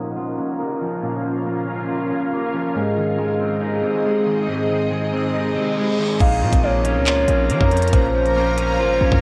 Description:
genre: hip hop, drill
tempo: 139 BPM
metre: 4/4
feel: half-time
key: Bb minor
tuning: A4 = 440 Hz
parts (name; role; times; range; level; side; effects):
- electric guitar at the edge of break-up; accompaniment; 0.0-9.2 s; Ab2 to F4; -27 LUFS; equal; spring reverb, low-pass filter
- granular cloud pad; sustained chords; 0.0-9.2 s; C4 to Bb5; -30 LUFS; equal; built-in reverb, low-pass filter
- concert harp; arpeggios; 0.0-9.2 s; Ab3 to Bb4; -26 LUFS; equal; low-pass filter, tape echo
- reverse cymbal; sound effects; 5.5-6.2 s; none; -34 LUFS; equal; none
- gliding portamento lead; second line; 6.2-9.2 s; C5 to F5; -23 LUFS; equal; chorus, tape echo
- hard-hitting 808-style bass; bass; 6.2-9.2 s; Ab1 to F3; -23 LUFS; equal; none
- drill drum kit; drums; 6.2-9.2 s; crash cymbal, handclaps, hi-hat, kick drum; -22 LUFS; equal; none
room: light reverb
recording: worn, warbling old tape, cassette tape, warbly pitch drift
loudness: -20 LUFS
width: mono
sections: 0.0-6.2 A section; 6.2-9.2 B section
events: filter sweep 0.0-6.2; reverse cymbal 5.5-6.2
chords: 0.0 Bbm; 2.8 Ab; 6.2 Bbm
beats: 0.16 0.59 | 1.02 1.46 1.89 2.32 | 2.75 3.18 3.62 4.05 | 4.48 4.91 5.34 5.77 | 6.21 6.64 7.07 7.50 | 7.93 8.36 8.79

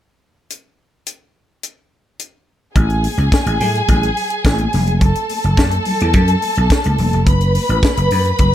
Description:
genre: disco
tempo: 106 BPM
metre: 4/4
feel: straight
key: unclear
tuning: A4 = 440 Hz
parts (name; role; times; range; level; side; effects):
- tight funk drum kit; drums; 0.5-8.5 s; hi-hat, kick drum, snare drum; -17 LUFS; equal; none
- dark studio string section; second line; 2.7-8.5 s; G#4 to B5; -19 LUFS; equal; none
- vintage slap bass; bass; 2.8-8.5 s; E1 to A2; -16 LUFS; equal; none
- congas; percussion; 2.8-8.5 s; none; -26 LUFS; left 3 dB; none
room: little or no reverb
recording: none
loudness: -13 LUFS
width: side -12 dB against mid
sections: 0.5-2.8 A section; 2.8-8.5 B section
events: none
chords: 0.5 N.C.; 2.8 Amaj7(no3); 5.0 F#m7; 7.3 B5/F#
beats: | 0.50 1.07 1.63 2.19 | 2.76 3.32 3.88 4.45 | 5.01 5.57 6.14 6.70 | 7.26 7.83 8.39

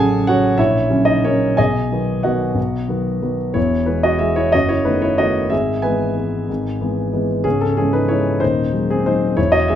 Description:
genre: classical, piano waltz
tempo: 184 BPM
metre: 3/4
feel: uneven beats, rubato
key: E major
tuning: A4 = 441 Hz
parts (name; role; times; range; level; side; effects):
- warm concert grand piano; solo; 0.0-9.8 s; C#1 to A5; -15 LUFS; equal; none
room: moderate large studio reverb, RT60 1.2 s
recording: none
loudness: -15 LUFS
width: side -10 dB against mid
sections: 0.0-3.6 A section; 3.6-9.8 B section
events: none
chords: 0.0 F#m/A; 0.6 F#7/A#; 1.6 B; 3.6 E; 4.5 B7/F#; 5.5 E/G#; 7.4 C#m; 8.4 G#7/D#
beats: 0.28 | 0.58 0.89 1.22 | 1.57 1.91 2.24 | 2.57 2.89 3.23 | 3.56 3.88 4.21 | 4.54 4.86 5.19 | 5.52 5.83 6.17 | 6.49 6.80 7.13 | 7.45 7.76 8.10 | 8.41 8.73 9.06 | 9.38 9.69

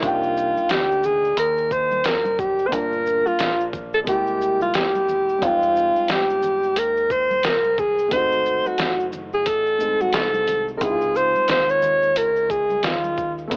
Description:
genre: hip hop, jazz-hop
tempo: 89 BPM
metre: 4/4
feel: swing 59% on 16ths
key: unclear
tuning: A4 = 437 Hz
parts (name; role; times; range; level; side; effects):
- mellow alto saxophone; melody; 0.0-13.4 s; F4 to Db5; -22 LUFS; equal; cassette tape
- dark concert grand piano; accompaniment; 0.0-13.6 s; C3 to G5; -32 LUFS; equal; cassette tape
- deep dub fingered electric bass; bass; 0.0-13.6 s; E1 to Eb2; -36 LUFS; equal; none
- lo-fi sampler-style drum kit; drums; 0.0-13.6 s; hi-hat, kick drum, shaker, snare drum; -29 LUFS; equal; cassette tape
- maracas and congas; percussion; 0.0-13.6 s; none; -44 LUFS; equal; none
room: light reverb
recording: home recording on cassette, AM radio sound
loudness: -21 LUFS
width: mono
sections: 0.0-13.6 A section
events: none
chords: 0.0 Cm9; 2.7 Gm7; 4.1 C7b13; 5.4 Fm9; 8.1 Ab7b9; 10.8 Dbmaj9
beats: | 0.03 0.70 1.38 2.05 | 2.72 3.40 4.07 4.75 | 5.42 6.09 6.77 7.44 | 8.12 8.79 9.46 10.14 | 10.81 11.49 12.16 12.84 | 13.51

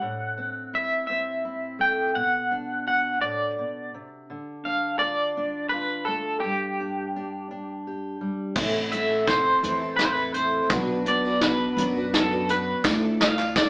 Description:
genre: indie folk with a building arrangement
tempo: 56 BPM (dotted quarters)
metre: 6/8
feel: straight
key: unclear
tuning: A4 = 440 Hz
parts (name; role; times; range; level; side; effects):
- electric guitar through a small old amp; melody; 0.0-13.7 s; G4 to G5; -24 LUFS; equal; tremolo
- fingerpicked steel-string acoustic guitar; accompaniment; 0.0-12.8 s; G2 to B4; -30 LUFS; equal; none
- picked twelve-string acoustic guitar; accompaniment; 8.6-13.7 s; A2 to B4; -31 LUFS; equal; none
- upright bass; bass; 8.6-13.7 s; A1 to F#2; -31 LUFS; equal; none
- soft brush drum kit; drums; 8.6-13.7 s; crash cymbal, hi-hat, kick drum, snare drum; -24 LUFS; equal; none
- felt-muted upright piano; accompaniment; 12.8-13.7 s; D2 to D5; -38 LUFS; equal; none
- bright upright piano; arpeggios; 12.8-13.7 s; E3 to D4; -32 LUFS; right 1 dB; none
- group handclap; percussion; 12.8-13.6 s; none; -33 LUFS; right 1 dB; none
- tambourine; percussion; 12.9-13.6 s; none; -44 LUFS; left 1 dB; none
room: wet studio reverb, RT60 0.7 s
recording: band playing live in one room, small speaker sound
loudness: -22 LUFS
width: side -28 dB against mid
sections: 0.0-8.6 A section; 8.6-13.7 B section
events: build-up 8.6-13.7; drum fill 8.6-13.7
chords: 0.0 Am; 2.2 Bm; 4.3 Dm; 6.4 G5; 8.6 Am; 10.7 Bm; 12.8 Dm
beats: | 0.01 1.08 | 2.15 3.22 | 4.29 5.36 | 6.43 7.50 | 8.57 9.64 | 10.71 11.78 | 12.85

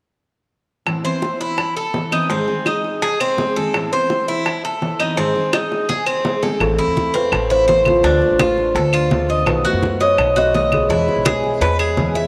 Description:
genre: latin, Cuban son and guajira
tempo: 168 BPM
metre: 4/4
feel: straight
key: A harmonic minor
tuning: A4 = 442 Hz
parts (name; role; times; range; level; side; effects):
- picked steel-string acoustic guitar; accompaniment; 0.9-12.3 s; G#2 to G#4; -26 LUFS; equal; none
- bongos; percussion; 0.9-12.3 s; none; -29 LUFS; equal; none
- claves; percussion; 0.9-12.0 s; none; -28 LUFS; equal; none
- Cuban tres; arpeggios; 1.0-12.3 s; B#3 to E5; -23 LUFS; equal; none
- kalimba; melody; 6.6-11.4 s; F4 to D#5; -19 LUFS; equal; none
- upright bass; bass; 6.6-12.3 s; A1 to F#2; -25 LUFS; equal; none
- congas; percussion; 6.6-12.3 s; none; -27 LUFS; equal; none
room: wet plate reverb, RT60 3.1 s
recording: none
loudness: -18 LUFS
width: mono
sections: 0.9-6.6 A section; 6.6-12.3 B section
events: drum fill 5.5-6.6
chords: 0.9 Amadd9; 2.3 G#; 3.7 Amadd9; 5.2 G#; 6.6 Am; 8.0 Dm; 9.5 B7; 10.9 E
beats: | 0.87 1.23 1.59 1.95 | 2.30 2.66 3.02 3.38 | 3.74 4.10 4.46 4.82 | 5.17 5.53 5.89 6.25 | 6.61 6.96 7.32 7.68 | 8.04 8.40 8.75 9.11 | 9.47 9.83 10.19 10.54 | 10.90 11.26 11.62 11.97

